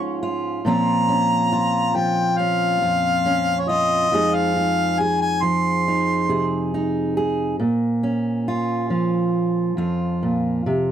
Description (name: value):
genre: acoustic folk duo or small band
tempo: 69 BPM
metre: 4/4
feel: straight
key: Bb minor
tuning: A4 = 441 Hz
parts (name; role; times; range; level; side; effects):
- warm harmonica; melody; 0.0-6.7 s; Db5 to Db6; -20 LUFS; left 1 dB; none
- fingerpicked steel-string acoustic guitar; accompaniment; 0.0-10.9 s; F2 to Ab4; -20 LUFS; right 1 dB; none
room: little or no reverb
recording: dry, close 1970s-style studio recording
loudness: -18 LUFS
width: side -9 dB against mid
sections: 0.0-10.9 A section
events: none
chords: 0.0 Db; 0.6 Bbmadd9; 4.1 Fm7; 7.6 Bbm